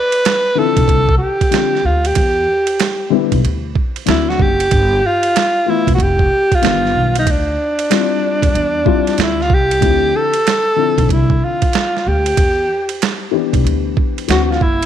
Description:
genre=hip hop, jazz-hop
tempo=94 BPM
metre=4/4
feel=swing 65% on 16ths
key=D dorian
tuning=A4 = 441 Hz
part: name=breathy alto saxophone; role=melody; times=0.0-14.9 s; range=D4 to B4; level=-15 LUFS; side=right 1 dB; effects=none
part: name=boom bap sampler-style drum kit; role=drums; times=0.1-14.9 s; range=hi-hat, kick drum, ride cymbal, snare drum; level=-18 LUFS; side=right 3 dB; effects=none
part: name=dark upright piano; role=accompaniment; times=0.6-14.5 s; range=D3 to G4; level=-19 LUFS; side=left 13 dB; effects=none
part: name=upright bass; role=bass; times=0.8-14.9 s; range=E1 to E2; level=-18 LUFS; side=equal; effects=transformer saturation
room=light reverb, small room ambience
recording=1960s-style stereo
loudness=-12 LUFS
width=side -10 dB against mid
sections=0.0-9.8 A section; 9.8-14.9 A section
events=none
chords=0.0 Dm9; 2.2 Em7; 4.1 D9; 4.7 G13; 6.6 Gaug7; 7.3 Dm11; 9.8 Dm9; 12.4 Em7; 14.3 D9

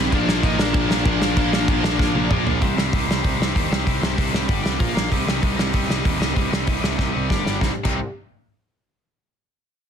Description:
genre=punk rock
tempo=192 BPM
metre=4/4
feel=straight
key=C minor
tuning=A4 = 442 Hz
part: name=dark smooth lead guitar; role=melody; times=0.0-2.3 s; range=C4 to Eb5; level=-24 LUFS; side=left 5 dB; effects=overdrive
part: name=crunchy overdriven guitar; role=riff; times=0.0-8.0 s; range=G2 to C4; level=-27 LUFS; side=right 18 dB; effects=none
part: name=heavy high-gain guitar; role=riff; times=0.0-2.6 s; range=Bb2 to Bb3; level=-28 LUFS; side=equal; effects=distortion
part: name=tight distorted guitar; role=riff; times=0.0-8.0 s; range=Bb2 to F5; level=-26 LUFS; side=left 16 dB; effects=distortion
part: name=fuzz picked electric bass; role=bass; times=0.0-8.0 s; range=G1 to Eb2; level=-26 LUFS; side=equal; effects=overdrive
part: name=loose indie drum kit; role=drums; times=0.1-7.9 s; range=crash cymbal, hi-hat, kick drum, snare drum, toms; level=-21 LUFS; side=equal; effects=none
room=little or no reverb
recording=dense, heavily limited modern master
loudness=-18 LUFS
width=side -8 dB against mid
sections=0.0-2.6 A section; 2.6-7.6 B section; 7.6-8.9 C section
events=drum fill 2.0-2.6, 7.0-7.6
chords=0.1 Bb; 2.6 Cm; 4.5 G5; 4.8 Bb5; 5.1 Cm; 7.3 G5; 7.6 Cm

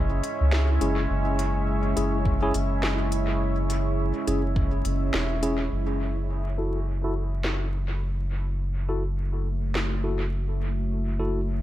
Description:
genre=ambient dub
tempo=104 BPM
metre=4/4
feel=swing 60% on 16ths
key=F# minor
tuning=A4 = 440 Hz
part: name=deep dark ambient pad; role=sustained chords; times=0.0-11.6 s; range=G#3 to E5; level=-30 LUFS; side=right 1 dB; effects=chorus, built-in reverb
part: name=soft dub sub bass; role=bass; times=0.0-11.6 s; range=E1 to C#2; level=-26 LUFS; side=equal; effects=tube saturation
part: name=organic electronic drum kit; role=drums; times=0.2-9.9 s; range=hi-hat, snare drum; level=-33 LUFS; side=equal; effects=low-pass filter on hats, low-pass filter on snare, low-pass filter on room, dub echo
part: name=tine electric piano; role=stabs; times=0.8-11.4 s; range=C#4 to A4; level=-32 LUFS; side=left 1 dB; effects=fast stereo tremolo, low-pass filter, dub echo
part: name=electronic kick drum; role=drums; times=2.3-4.7 s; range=none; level=-27 LUFS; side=equal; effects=none
room=digital ambience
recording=echo-heavy mix, vinyl crackle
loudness=-24 LUFS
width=side -14 dB against mid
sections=0.0-5.7 A section; 5.7-11.6 B section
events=filter sweep on ambient pad 5.7-11.6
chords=0.0 C#m/F#; 5.7 F#m7

